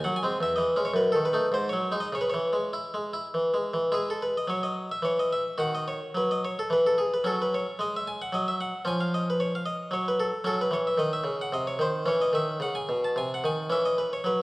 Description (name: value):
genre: classical, baroque-style suite movement for harpsichord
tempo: 97-115 BPM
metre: 3/4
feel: rubato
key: C# minor, E major from 3.9 s, C# minor from 10.4 s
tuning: A4 = 440 Hz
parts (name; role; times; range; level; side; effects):
- harpsichord; solo; 0.0-14.4 s; E2 to A5; -25 LUFS; equal; none
room: wet scoring stage reverb, RT60 1.7 s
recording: worn, warbling old tape, cassette tape, vinyl crackle, warbly pitch drift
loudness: -25 LUFS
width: side -21 dB against mid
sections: 0.0-3.9 A section; 3.9-14.4 A section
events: none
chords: 0.4 C#m/E; 1.0 D#dim/F#; 1.5 G#5; 2.1 C#m; 3.9 E; 5.6 D#m7; 6.7 N.C.; 7.2 F#5; 8.9 C#/E#; 9.9 N.C.; 10.4 C#madd9; 11.5 Cm; 12.1 C#m; 13.1 G#/B#; 13.7 C#m/E